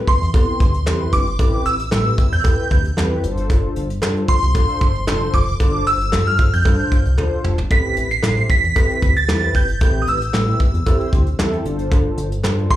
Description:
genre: early-eighties boogie funk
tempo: 114 BPM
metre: 4/4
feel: straight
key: A minor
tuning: A4 = 440 Hz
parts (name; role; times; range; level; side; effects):
- mellow synth brass; accompaniment; 0.0-12.8 s; B3 to C5; -25 LUFS; left 1 dB; chorus, slapback echo
- chorused synth bass; bass; 0.0-12.7 s; F1 to A2; -20 LUFS; equal; none
- shimmering bell with halo; melody; 0.1-12.8 s; C6 to C7; -21 LUFS; right 2 dB; ensemble chorus, slapback echo
- soft brush drum kit; drums; 0.1-12.8 s; handclaps, hi-hat, kick drum, snare drum, toms; -18 LUFS; equal; none
- cowbell; percussion; 0.3-12.6 s; none; -27 LUFS; right 2 dB; slapback echo
room: light reverb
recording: live gig heard through the venue's PA, club reverb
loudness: -15 LUFS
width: side -13 dB against mid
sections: 0.0-12.8 A section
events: drum fill 7.2-7.7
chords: 0.0 Am7; 3.2 G7sus4; 7.7 Am7; 11.7 G7sus4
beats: 0.34 0.86 | 1.39 1.92 2.44 2.97 | 3.50 4.02 4.55 5.07 | 5.60 6.13 6.65 7.18 | 7.71 8.23 8.76 9.29 | 9.81 10.34 10.86 11.39 | 11.92 12.44

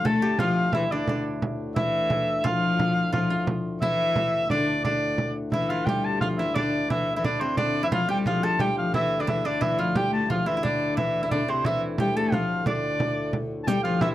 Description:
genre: medieval dance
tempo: 176 BPM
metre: 3/4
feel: straight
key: D minor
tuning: A4 = 443 Hz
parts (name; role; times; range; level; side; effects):
- clear shawm; melody; 0.0-14.1 s; C5 to A5; -26 LUFS; equal; none
- clear viola da gamba; second line; 0.0-14.1 s; C3 to A3; -28 LUFS; left 3 dB; none
- koto; second line; 0.0-14.1 s; C4 to A4; -32 LUFS; right 3 dB; none
- pedal harmonium; drone; 0.0-14.1 s; D2 to A2; -34 LUFS; left 3 dB; none
- frame drum; percussion; 0.1-14.1 s; none; -30 LUFS; right 2 dB; none
- riq; percussion; 13.7-13.8 s; none; -30 LUFS; left 5 dB; none
room: light reverb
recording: dry, close 1970s-style studio recording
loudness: -22 LUFS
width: side -13 dB against mid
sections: 0.0-5.5 A section; 5.5-13.7 B section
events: none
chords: none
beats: 0.05 | 0.39 0.74 1.08 | 1.42 1.77 2.11 | 2.45 2.79 3.14 | 3.48 3.82 4.16 | 4.50 4.85 5.19 | 5.53 5.87 6.21 | 6.55 6.89 7.24 | 7.58 7.92 8.26 | 8.60 8.94 9.28 | 9.62 9.96 10.29 | 10.63 10.97 11.31 | 11.65 11.99 12.33 | 12.67 13.01 13.34 | 13.68 14.02

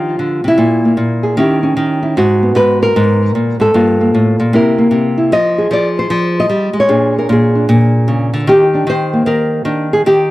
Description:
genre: solo jazz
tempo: 152 BPM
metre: 4/4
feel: swing 64% on 8ths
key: Eb major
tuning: A4 = 440 Hz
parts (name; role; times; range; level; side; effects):
- nylon-string guitar; solo; 0.0-10.3 s; G2 to Eb5; -10 LUFS; equal; tape echo
room: small room ambience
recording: dry, close 1970s-style studio recording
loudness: -10 LUFS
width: side -17 dB against mid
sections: 0.0-10.3 A section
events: none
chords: 0.0 Ebsus2; 0.6 Absus2/Bb; 1.4 Eb7b9; 2.2 Abm9; 3.7 Gm9; 4.5 C7; 5.3 Fm9; 6.9 Bb7#9; 8.5 Ebmaj7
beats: 0.19 | 0.59 0.98 1.38 1.77 | 2.17 2.56 2.96 3.35 | 3.75 4.14 4.53 4.93 | 5.32 5.72 6.11 6.51 | 6.90 7.29 7.69 8.08 | 8.47 8.87 9.26 9.66 | 10.05

